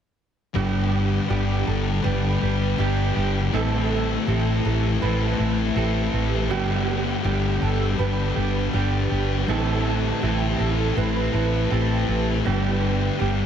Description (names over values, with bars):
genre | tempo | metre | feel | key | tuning
rock | 81 BPM | 4/4 | straight | G major | A4 = 440 Hz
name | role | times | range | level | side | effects
fingerpicked twelve-string acoustic guitar | arpeggios | 0.5-13.5 s | G4 to B4 | -30 LUFS | right 4 dB | ensemble chorus, ping-pong delay
crunchy overdriven guitar | riff | 0.5-13.5 s | G2 to A4 | -27 LUFS | right 7 dB | reverse reverb
thick fuzz guitar | riff | 0.5-13.5 s | G2 to A3 | -25 LUFS | left 7 dB | distortion, wide subtle chorus
vintage muted fingered electric bass | bass | 0.6-13.5 s | G1 to A1 | -24 LUFS | equal | none
room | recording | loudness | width
wet huge ambient reverb, RT60 7.5 s | dreamy mix soaked in reverb | -20 LUFS | side -8 dB against mid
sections
0.5-13.5 A section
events
none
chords
0.5 G; 3.5 Amadd9; 6.5 G; 9.5 Amadd9; 12.5 G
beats
| 0.55 1.29 2.04 2.78 | 3.53 4.27 5.02 5.76 | 6.51 7.25 8.00 8.74 | 9.48 10.23 10.97 11.71 | 12.46 13.20